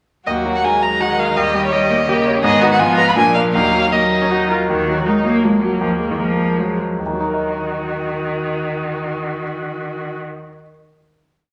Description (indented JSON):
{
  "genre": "quick classical-period movement for piano quintet",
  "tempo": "142-170 BPM",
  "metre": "3/4",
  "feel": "straight",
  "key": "Eb minor",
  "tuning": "A4 = 440 Hz",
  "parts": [
    { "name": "warm violin", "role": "melody", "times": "0.3-4.5 s", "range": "Db5 to Cb6", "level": "-19 LUFS", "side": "equal", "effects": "none" },
    { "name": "rich violin", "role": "second line", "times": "0.3-4.5 s", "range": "D4 to Ab4", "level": "-24 LUFS", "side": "equal", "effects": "none" },
    { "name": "warm cello", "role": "second line", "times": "0.3-10.2 s", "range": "Db3 to Bb3", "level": "-24 LUFS", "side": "equal", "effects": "none" },
    { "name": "bright grand piano", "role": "accompaniment", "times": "0.3-10.7 s", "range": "Eb2 to Eb5", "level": "-23 LUFS", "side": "equal", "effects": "none" },
    { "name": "rich viola", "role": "accompaniment", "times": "0.3-10.2 s", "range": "G3 to Gb4", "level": "-26 LUFS", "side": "equal", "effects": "none" }
  ],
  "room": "wet large studio reverb, RT60 1.3 s",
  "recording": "none",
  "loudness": "-17 LUFS",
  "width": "mono",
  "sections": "0.3-4.7 A section; 4.7-7.0 coda; 7.0-9.4 final chord",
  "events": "slowing down 4.1-7.0",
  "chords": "0.3 Ebm; 1.4 Eb7; 2.4 Abm; 2.8 Fdim/Ab; 3.2 Bb7; 3.5 Ebm; 5.8 Bb5/Eb; 7.0 Ebm",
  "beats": "| 0.27 0.64 1.00 | 1.37 1.73 2.08 | 2.44 2.80 3.16 | 3.54 3.92 4.31 | 4.69 5.06 5.43 | 5.80 6.18 6.58 | 7.00 7.40 7.80 | 8.20 8.61 9.01"
}